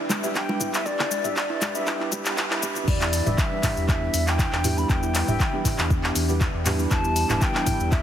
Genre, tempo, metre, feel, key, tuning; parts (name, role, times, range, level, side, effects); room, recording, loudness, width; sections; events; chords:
afro house; 119 BPM; 4/4; swing 53% on 16ths; E minor pentatonic; A4 = 439 Hz
warm analog pad; sustained chords; 0.0-8.0 s; E3 to E5; -33 LUFS; left 1 dB; chorus, sidechain pumping
handpan; arpeggios; 0.0-8.0 s; B3 to E5; -32 LUFS; right 4 dB; sidechain pumping, digital delay
afro-pop drum kit; drums; 0.1-8.0 s; crash cymbal, handclaps, hi-hat, shaker, toms; -26 LUFS; left 1 dB
congas; percussion; 0.1-2.9 s; -32 LUFS; equal
felt-muted upright piano; stabs; 0.2-8.0 s; G3 to G4; -32 LUFS; right 4 dB; sidechain pumping, digital delay
mellow hollow silver concert flute; melody; 0.4-8.0 s; D5 to B5; -29 LUFS; left 2 dB; digital delay
electronic kick drum; drums; 0.4-8.0 s; -25 LUFS; equal; high-pass filter on kick
round analog bass; bass; 2.9-8.0 s; E1 to E2; -26 LUFS; equal; sidechain pumping
light reverb, small room ambience; heavily compressed radio sound, multiband compression, high-pass filter; -21 LUFS; side -10 dB against mid
0.0-2.9 A section; 2.9-8.0 B section
build-up 0.0-2.9; filter sweep on analog synth pad 0.0-2.9; drop 2.9-8.0
0.0 Em7